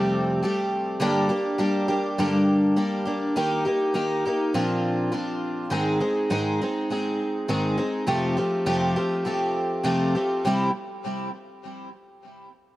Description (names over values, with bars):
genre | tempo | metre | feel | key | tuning
rock | 102 BPM | 4/4 | straight | C minor | A4 = 440 Hz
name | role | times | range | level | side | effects
picked twelve-string acoustic guitar | solo | 0.0-10.7 s | F2 to Ab4 | -22 LUFS | equal | digital delay
room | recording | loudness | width
light reverb | dark, warm production | -22 LUFS | side -16 dB against mid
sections
0.0-5.7 A section; 5.7-10.5 B section; 10.5-12.8 C section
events
none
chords
0.0 Fadd9; 1.0 Gm; 3.4 Eb; 4.5 Bbadd9; 5.7 Ab; 8.1 Fadd9; 10.5 C5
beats
0.42 | 1.01 1.60 2.19 2.77 | 3.36 3.95 4.54 5.13 | 5.72 6.31 6.90 7.49 | 8.09 8.68 9.27 9.86 | 10.46